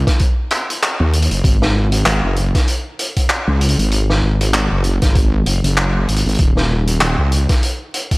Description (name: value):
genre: glitch hop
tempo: 97 BPM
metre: 4/4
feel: swing 57% on 16ths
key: unclear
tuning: A4 = 437 Hz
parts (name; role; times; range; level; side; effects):
- wobble bass; bass; 0.0-7.5 s; D#1 to D#2; -15 LUFS; equal; chorus
- electronic kick drum; drums; 0.1-8.2 s; none; -15 LUFS; equal; none
- raw garage drum kit; drums; 0.1-8.2 s; handclaps, hi-hat, snare drum; -19 LUFS; equal; none
room: little or no reverb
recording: dry, gritty hardware recording, vinyl crackle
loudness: -14 LUFS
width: side -25 dB against mid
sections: 0.0-8.2 A section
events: none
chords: none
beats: 0.20 0.82 | 1.44 2.06 2.68 3.30 | 3.92 4.53 5.15 5.77 | 6.39 7.01 7.63